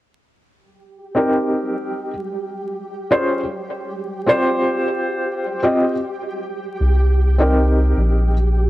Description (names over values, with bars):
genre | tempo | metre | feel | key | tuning
trip hop | 77 BPM | 4/4 | straight | C minor | A4 = 440 Hz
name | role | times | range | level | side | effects
flickering grainy texture | texture | 1.0-8.7 s | G4 | -28 LUFS | right 2 dB | built-in reverb, cassette tape
felt-muted upright piano | accompaniment | 1.1-8.3 s | C4 to Eb5 | -18 LUFS | equal | tremolo, low-pass filter, cassette tape, tape echo
round analog bass | bass | 6.8-8.7 s | Bb1 to C2 | -15 LUFS | equal | none
room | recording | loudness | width
light reverb, small room ambience | home recording on cassette, vinyl crackle | -17 LUFS | side -16 dB against mid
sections
0.6-8.7 A section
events
none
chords
0.6 Cm7; 2.1 Dbmaj7#11; 3.7 Fsus2; 6.8 Cm7